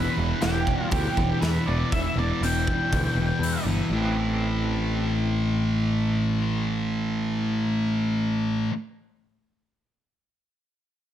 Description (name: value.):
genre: quiet-loud alternative rock.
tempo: 120 BPM.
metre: 4/4.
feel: straight.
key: A minor.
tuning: A4 = 439 Hz.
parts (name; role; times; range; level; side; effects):
octave-fuzz lead guitar; melody; 0.0-3.6 s; G4 to G5; -29 LUFS; right 1 dB; distortion.
electric guitar at the edge of break-up; arpeggios; 0.0-8.7 s; E2 to E4; -34 LUFS; equal; tremolo.
thick fuzz guitar; riff; 0.0-8.7 s; E2 to A3; -25 LUFS; equal; distortion.
overdriven picked electric bass; bass; 0.0-8.6 s; E1 to E2; -29 LUFS; equal; none.
big rock drum kit; drums; 0.4-3.5 s; hi-hat, kick drum, snare drum; -30 LUFS; equal; none.
room: light reverb, small room ambience.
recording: none.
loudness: -22 LUFS.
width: side -11 dB against mid.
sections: 0.0-3.9 A section; 3.9-7.9 B section.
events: lead electric guitar solo 0.0-3.9.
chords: 0.0 Em; 3.9 Am.